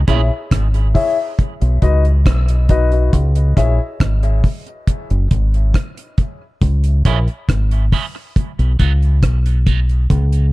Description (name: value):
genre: dub reggae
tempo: 69 BPM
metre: 4/4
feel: straight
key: C# dorian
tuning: A4 = 441 Hz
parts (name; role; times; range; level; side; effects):
- deep dub fingered electric bass; bass; 0.0-10.5 s; F#1 to C#2; -14 LUFS; equal; none
- electric guitar at the edge of break-up; accompaniment; 0.1-0.2, 7.1-9.8 s; F#3 to G#4; -28 LUFS; right 8 dB; high-pass filter, dub echo
- dark baby grand piano; stabs; 0.1-3.8 s; D#4 to E5; -22 LUFS; left 5 dB; high-pass filter, dub echo
- deep reggae drum kit; drums; 0.1-10.5 s; hi-hat, kick drum, rim click; -16 LUFS; equal; none
room: small room ambience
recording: dark, warm production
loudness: -13 LUFS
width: side -19 dB against mid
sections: 0.0-10.5 A section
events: break 0.0-6.6; filter sweep 3.1-10.5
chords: 0.0 C#m; 1.4 B; 3.1 C#m; 4.9 F#sus2; 6.6 C#m; 8.4 B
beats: 0.51 1.38 2.25 | 3.13 4.00 4.87 5.74 | 6.61 7.49 8.36 9.23 | 10.10